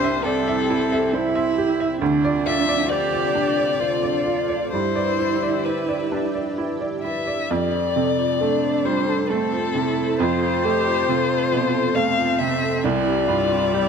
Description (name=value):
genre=neoclassical piano and strings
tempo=67 BPM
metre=3/4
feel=rubato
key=unclear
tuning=A4 = 439 Hz
part: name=dark violin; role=melody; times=0.0-13.9 s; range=A4 to F5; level=-23 LUFS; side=left 8 dB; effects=none
part: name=dark cello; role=second line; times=0.0-13.9 s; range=C4 to G4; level=-25 LUFS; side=right 5 dB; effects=none
part: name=bright baby grand piano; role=accompaniment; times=0.0-13.9 s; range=C2 to E5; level=-24 LUFS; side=right 4 dB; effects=none
part: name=analog string pad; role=sustained chords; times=0.0-13.9 s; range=C4 to A5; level=-32 LUFS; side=equal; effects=ensemble chorus
part: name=vibraphone with soft mallets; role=arpeggios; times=0.0-13.9 s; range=C4 to E5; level=-29 LUFS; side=left 1 dB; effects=tape echo
room=light reverb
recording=close, detailed microphones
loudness=-19 LUFS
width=side -6 dB against mid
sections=0.0-7.5 A section; 7.5-13.9 B section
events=none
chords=0.0 C6; 2.0 Dm7; 4.7 G6; 7.5 F; 12.8 C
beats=0.24 1.12 | 2.01 2.89 3.79 | 4.71 5.65 6.57 | 7.50 8.40 9.30 | 10.19 11.08 11.95 | 12.84 13.72